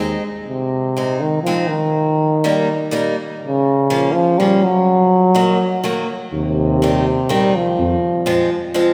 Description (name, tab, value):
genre	alpine folk, alpine dance band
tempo	124 BPM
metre	3/4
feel	straight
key	Ab major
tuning	A4 = 437 Hz
part	warm euphonium	melody	0.0-8.9 s	C3 to Ab3	-18 LUFS	equal	none
part	picked steel-string acoustic guitar	accompaniment	0.0-8.9 s	Eb3 to Eb4	-23 LUFS	equal	none
part	mellow tuba	bass	0.0-0.2, 6.3-7.9 s	Eb2 to F2	-24 LUFS	equal	none
room	wet church reverb, RT60 3.3 s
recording	recorded in a church or concert hall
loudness	-17 LUFS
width	mono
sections	0.5-8.9 A section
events	none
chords	0.5 Ab; 2.0 Eb; 3.4 Bbm; 4.9 Ebm; 6.3 Cm/Eb; 7.8 Fm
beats	0.00 | 0.49 0.98 1.47 | 1.96 2.44 2.93 | 3.42 3.90 4.38 | 4.87 5.35 5.83 | 6.32 6.81 7.30 | 7.78 8.26 8.75